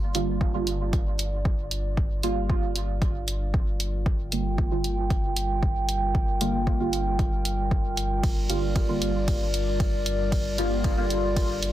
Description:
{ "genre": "dub techno", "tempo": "115 BPM", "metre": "4/4", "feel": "straight", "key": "G minor", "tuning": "A4 = 440 Hz", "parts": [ { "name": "dark analog pad", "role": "sustained chords", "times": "0.0-11.7 s", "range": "G3 to G5", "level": "-31 LUFS", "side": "right 1 dB", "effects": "lush chorus, sidechain pumping" }, { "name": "pure sine sub bass", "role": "bass", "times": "0.0-11.7 s", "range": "G1", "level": "-29 LUFS", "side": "equal", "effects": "sidechain pumping" }, { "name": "deep mellow chord stab", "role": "stabs", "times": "0.1-11.2 s", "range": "D3 to F4", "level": "-30 LUFS", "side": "right 1 dB", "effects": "chorus, phaser, sidechain pumping, dub echo" }, { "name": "punchy analog drum machine", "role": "drums", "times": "0.1-11.7 s", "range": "hi-hat, ride cymbal", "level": "-32 LUFS", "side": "right 1 dB", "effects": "none" }, { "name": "electronic kick drum", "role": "drums", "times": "0.4-11.5 s", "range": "none", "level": "-26 LUFS", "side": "equal", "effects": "overdrive" } ], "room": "light reverb, digital ambience", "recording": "dense, heavily limited modern master", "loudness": "-23 LUFS", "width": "side -13 dB against mid", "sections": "0.0-11.7 A section", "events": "none", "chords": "0.0 Gm7" }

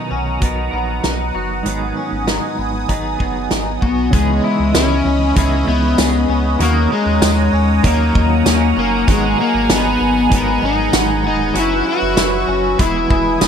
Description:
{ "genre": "dream pop", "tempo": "97 BPM", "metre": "4/4", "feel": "straight", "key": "unclear", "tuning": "A4 = 440 Hz", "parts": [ { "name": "semi-hollow electric guitar", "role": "accompaniment", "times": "0.0-13.5 s", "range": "G#2 to B4", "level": "-24 LUFS", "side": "right 3 dB", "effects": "tremolo, lush chorus, shimmer reverb" }, { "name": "phased analog pad", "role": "sustained chords", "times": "0.0-13.5 s", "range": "B3 to E6", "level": "-22 LUFS", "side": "right 4 dB", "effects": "phaser, chorus, shimmer reverb" }, { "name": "clean electric guitar", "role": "arpeggios", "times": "0.0-13.5 s", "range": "B3 to D#5", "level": "-24 LUFS", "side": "left 4 dB", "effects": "analog chorus, tape echo, shimmer reverb" }, { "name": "saturated sub bass", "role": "bass", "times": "0.1-13.5 s", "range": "E1 to D#2", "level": "-20 LUFS", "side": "equal", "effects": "none" }, { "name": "loose indie drum kit", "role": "drums", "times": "0.4-13.5 s", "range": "hi-hat, kick drum, snare drum, tambourine", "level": "-18 LUFS", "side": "right 1 dB", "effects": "none" }, { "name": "overdriven slide guitar", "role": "melody", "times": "3.8-13.5 s", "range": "G#3 to F#4", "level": "-17 LUFS", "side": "left 4 dB", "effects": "tape echo, shimmer reverb" } ], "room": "light reverb", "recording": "none", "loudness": "-13 LUFS", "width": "side -7 dB against mid", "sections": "0.0-4.1 A section; 4.1-13.5 B section", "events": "none", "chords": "0.0 Bmaj7; 1.7 G#m7; 4.1 C#m9; 6.6 D#m7; 9.1 G#m9; 11.6 F#7sus4; 12.8 Emaj7" }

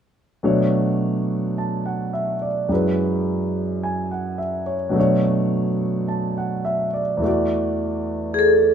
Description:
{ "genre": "jazz", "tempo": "53 BPM", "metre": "4/4", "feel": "swing 69% on 8ths", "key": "unclear", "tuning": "A4 = 440 Hz", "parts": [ { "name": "warm concert grand piano", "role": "accompaniment", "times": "0.4-8.7 s", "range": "E2 to A5", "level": "-20 LUFS", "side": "right 1 dB", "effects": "none" }, { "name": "vibraphone with medium hard mallets", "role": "melody", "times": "8.3-8.7 s", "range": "G#4 to A4", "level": "-13 LUFS", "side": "equal", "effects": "none" } ], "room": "moderate echo chamber reverb, RT60 1.8 s", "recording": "minimal, uncompressed stereo recording", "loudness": "-19 LUFS", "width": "side -8 dB against mid", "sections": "0.4-8.7 A section", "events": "none", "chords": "0.4 Bm9; 2.7 F#7sus4; 5.0 Bm9; 7.2 E7sus4" }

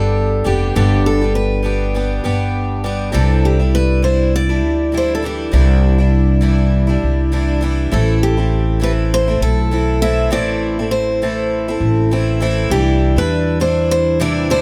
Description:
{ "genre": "acoustic pop", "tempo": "100 BPM", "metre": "4/4", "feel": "swing 55% on 16ths", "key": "C major", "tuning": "A4 = 440 Hz", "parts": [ { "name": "picked steel-string acoustic guitar", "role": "melody", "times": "0.0-14.6 s", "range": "G4 to E5", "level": "-22 LUFS", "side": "equal", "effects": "none" }, { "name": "picked twelve-string acoustic guitar", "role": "accompaniment", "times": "0.0-14.6 s", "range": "G2 to G4", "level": "-22 LUFS", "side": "equal", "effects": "none" }, { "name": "upright bass", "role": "bass", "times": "0.0-14.6 s", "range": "F1 to E2", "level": "-18 LUFS", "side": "equal", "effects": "none" } ], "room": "little or no reverb", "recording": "close, detailed microphones", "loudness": "-16 LUFS", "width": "mono", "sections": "0.0-3.1 A section; 3.1-12.7 B section; 12.7-14.6 C section", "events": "none", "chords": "0.0 G; 3.1 Cadd9; 7.9 Am; 12.7 Cadd9" }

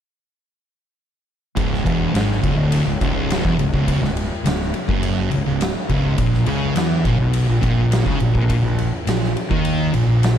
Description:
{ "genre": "stoner and doom metal", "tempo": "104 BPM", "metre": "4/4", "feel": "straight", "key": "C# dorian", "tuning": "A4 = 440 Hz", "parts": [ { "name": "thick fuzz guitar", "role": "riff", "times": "1.6-10.3 s", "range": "C#2 to E3", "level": "-21 LUFS", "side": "left 6 dB", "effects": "distortion" }, { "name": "thick fuzz guitar", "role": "riff", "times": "1.6-10.3 s", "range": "C#2 to E3", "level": "-21 LUFS", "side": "right 6 dB", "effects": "distortion" }, { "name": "fuzz fingered electric bass", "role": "bass", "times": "1.6-10.3 s", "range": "C#1 to E2", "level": "-25 LUFS", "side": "equal", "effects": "overdrive" }, { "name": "oversized low-tuned drum kit", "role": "drums", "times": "1.6-10.4 s", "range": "kick drum, ride cymbal, snare drum", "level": "-23 LUFS", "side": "equal", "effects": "none" } ], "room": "light reverb", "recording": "dark, warm production", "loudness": "-16 LUFS", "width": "side -9 dB against mid", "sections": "1.6-10.4 A section", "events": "none", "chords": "1.6 C#m; 6.2 A#madd11" }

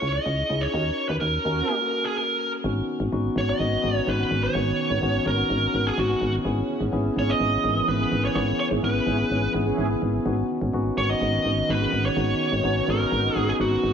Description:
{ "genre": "pop", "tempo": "126 BPM", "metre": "4/4", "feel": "straight", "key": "unclear", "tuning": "A4 = 441 Hz", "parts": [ { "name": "smooth overdriven lead guitar", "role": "melody", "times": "0.0-13.9 s", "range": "F#4 to D#5", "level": "-25 LUFS", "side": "right 2 dB", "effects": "digital delay" }, { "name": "mellow tine electric piano", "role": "accompaniment", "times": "0.0-13.9 s", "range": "A#3 to A#4", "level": "-27 LUFS", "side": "left 4 dB", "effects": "wide subtle chorus" }, { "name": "solid FM bass", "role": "bass", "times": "0.0-13.9 s", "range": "G#1 to D#2", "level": "-26 LUFS", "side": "equal", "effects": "none" }, { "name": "mellow synth brass", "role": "stabs", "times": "0.7-1.8, 8.7-9.9 s", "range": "C#4 to A#4", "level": "-33 LUFS", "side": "right 5 dB", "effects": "chorus, digital delay" }, { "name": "chorused pulse-width pad", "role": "sustained chords", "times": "2.6-13.9 s", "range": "D#3 to D#4", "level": "-32 LUFS", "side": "right 5 dB", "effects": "none" } ], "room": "light reverb, digital ambience", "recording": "none", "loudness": "-21 LUFS", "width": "side -7 dB against mid", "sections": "0.0-2.6 A section; 2.6-13.9 B section", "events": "band accent 0.7-2.6, 8.4-10.3", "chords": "0.0 C#madd9; 0.7 D#m7; 1.7 F#; 2.6 Badd9/G#; 6.5 C#m7/G#; 10.3 Badd9/G#" }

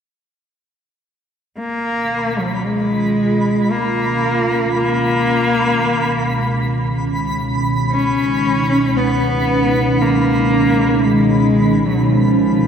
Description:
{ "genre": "ambient", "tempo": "free time", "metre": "none", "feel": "none", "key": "Db mixolydian", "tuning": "A4 = 441 Hz", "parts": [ { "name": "rich cello", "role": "melody", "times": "1.6-12.7 s", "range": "F3 to Db4", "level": "-18 LUFS", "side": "left 1 dB", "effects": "ping-pong delay" }, { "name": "warbly tape-like pad", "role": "sustained chords", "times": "2.1-12.7 s", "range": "Cb3 to F4", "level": "-17 LUFS", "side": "right 1 dB", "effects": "chorus, built-in reverb" }, { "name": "dark studio double bass section", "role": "bass", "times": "1.6-12.7 s", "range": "Db2", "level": "-32 LUFS", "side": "equal", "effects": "none" }, { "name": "twinkling granular texture", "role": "texture", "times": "2.0-12.7 s", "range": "Cb6", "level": "-25 LUFS", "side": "equal", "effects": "built-in reverb" } ], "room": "wet concert hall reverb, RT60 2.5 s", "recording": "none", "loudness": "-14 LUFS", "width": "side -7 dB against mid", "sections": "1.6-12.7 A section", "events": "fade-in on double bass section 1.6-12.7", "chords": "1.6 Db13" }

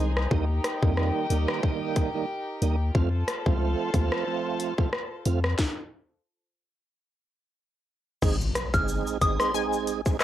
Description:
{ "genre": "dancehall", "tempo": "91 BPM", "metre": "4/4", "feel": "swing 56% on 16ths", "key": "Ab major", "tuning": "A4 = 437 Hz", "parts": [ { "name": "tonewheel organ", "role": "accompaniment", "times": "0.0-10.2 s", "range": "Eb3 to Ab4", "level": "-29 LUFS", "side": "right 9 dB", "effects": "chorus vibrato, slow rotary speaker, cassette tape" }, { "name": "dark chamber string section", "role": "sustained chords", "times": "0.0-5.6 s", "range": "Eb4 to A5", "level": "-34 LUFS", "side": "left 2 dB", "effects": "sidechain pumping, cassette tape" }, { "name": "punchy sub bass", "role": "bass", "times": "0.0-9.4 s", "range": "G1 to F2", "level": "-25 LUFS", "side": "left 1 dB", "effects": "none" }, { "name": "island pop drum kit", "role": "drums", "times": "0.2-10.2 s", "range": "crash cymbal, handclaps, hi-hat, kick drum, rim click, shaker, snare drum", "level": "-27 LUFS", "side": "left 1 dB", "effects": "cassette tape" }, { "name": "impact", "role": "sound effects", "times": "8.3-10.2 s", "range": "none", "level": "-36 LUFS", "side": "left 1 dB", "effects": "none" }, { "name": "soft synth bell", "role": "melody", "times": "8.7-9.5 s", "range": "C6 to F6", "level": "-28 LUFS", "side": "left 1 dB", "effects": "chorus" }, { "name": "analog pluck", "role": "second line", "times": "9.5-10.2 s", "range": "Eb5 to Ab5", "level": "-31 LUFS", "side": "left 11 dB", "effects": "chorus, cassette tape, analog delay" } ], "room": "little or no reverb", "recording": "home recording on cassette", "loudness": "-24 LUFS", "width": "side -12 dB against mid", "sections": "0.0-8.2 A section; 8.2-10.2 B section", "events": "stop 5.6-8.2; impact 8.2-10.2", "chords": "0.3 Eb; 3.0 F; 5.6 N.C.; 8.2 Ab" }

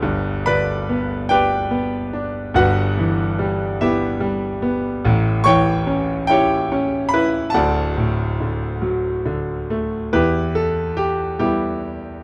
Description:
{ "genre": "classical, lyrical solo piano", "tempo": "48 BPM (dotted quarters)", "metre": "6/8", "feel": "rubato", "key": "G major", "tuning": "A4 = 441 Hz", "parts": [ { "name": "bright grand piano", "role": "solo", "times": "0.0-12.2 s", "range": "D1 to C#6", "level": "-20 LUFS", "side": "equal", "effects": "none" } ], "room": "light reverb", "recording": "dark, warm production", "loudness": "-20 LUFS", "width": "mono", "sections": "0.0-10.1 A section; 10.1-12.2 B section", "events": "none", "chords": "0.0 G; 2.6 Em/G; 5.0 A7; 7.5 D; 10.1 Em" }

